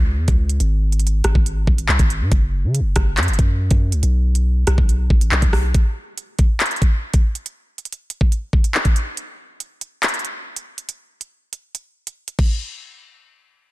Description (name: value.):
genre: hip hop, drill.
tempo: 140 BPM.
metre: 4/4.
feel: half-time.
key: unclear.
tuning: A4 = 443 Hz.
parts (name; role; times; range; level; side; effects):
long sustained 808-style bass; bass; 0.0-5.7 s; F#1 to C#3; -18 LUFS; equal; none.
drill drum kit; drums; 0.3-12.5 s; crash cymbal, handclaps, hi-hat, kick drum, rim click; -17 LUFS; equal; none.
room: little or no reverb.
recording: dense, heavily limited modern master.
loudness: -16 LUFS.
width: side -18 dB against mid.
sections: 0.0-5.7 A section; 5.7-12.6 B section; 12.6-13.7 C section.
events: none.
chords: none.